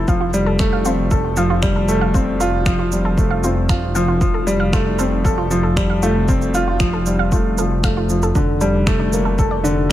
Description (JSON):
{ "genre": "piano and strings electronica", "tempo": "116 BPM", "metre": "4/4", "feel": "straight", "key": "unclear", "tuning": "A4 = 441 Hz", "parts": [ { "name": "warm baby grand piano", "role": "riff", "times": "0.0-9.9 s", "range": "D3 to A4", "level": "-18 LUFS", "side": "left 1 dB", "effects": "digital delay" }, { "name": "dark detuned saw bass", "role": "bass", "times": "0.0-9.9 s", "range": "F1", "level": "-21 LUFS", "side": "equal", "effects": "sidechain pumping" }, { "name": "analog pluck", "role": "arpeggios", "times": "0.1-9.9 s", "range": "D4 to F5", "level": "-27 LUFS", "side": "right 2 dB", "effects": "chorus, sidechain pumping, digital delay" }, { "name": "electronic kick drum", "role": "drums", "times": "0.1-9.9 s", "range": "none", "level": "-19 LUFS", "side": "equal", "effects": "overdrive" }, { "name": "electronic shaker and finger snaps", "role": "drums", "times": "0.1-9.8 s", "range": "none", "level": "-27 LUFS", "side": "right 2 dB", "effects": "none" } ], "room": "light reverb, digital ambience", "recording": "none", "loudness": "-15 LUFS", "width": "side -13 dB against mid", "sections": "0.0-9.9 A section", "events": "none", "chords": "0.1 Fadd9; 8.4 Gmadd9/F", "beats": "| 0.08 0.59 1.11 1.63 | 2.15 2.66 3.18 3.70 | 4.21 4.73 5.25 5.77 | 6.28 6.80 7.32 7.84 | 8.35 8.87 9.39 9.90" }